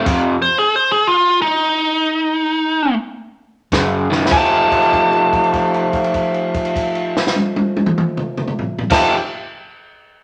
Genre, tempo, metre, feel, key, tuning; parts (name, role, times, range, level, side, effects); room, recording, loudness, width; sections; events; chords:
electric blues shuffle; 98-123 BPM; 4/4; swing 66% on 8ths; F mixolydian; A4 = 444 Hz
crunchy overdriven guitar; riff; 0.0-0.3, 3.7-9.2 s; F2 to G4; -20 LUFS; equal
vintage muted fingered electric bass; bass; 0.0-0.5, 3.7-9.1 s; F1 to F2; -32 LUFS; equal
compact cocktail drum kit; drums; 0.1-0.2, 3.7-9.0 s; crash cymbal, hi-hat, kick drum, snare drum, toms; -23 LUFS; equal
biting lead guitar; melody; 0.4-9.1 s; Eb4 to A5; -17 LUFS; equal; overdrive
moderate large studio reverb, RT60 1.0 s; -16 LUFS; mono
0.0-4.3 A section; 4.3-9.2 B section
slowing down 0.1-4.3; stop 0.1-3.7; drum fill 4.0-4.3; held note 4.3-8.8
0.1 F5; 3.7 Gb5; 4.3 F9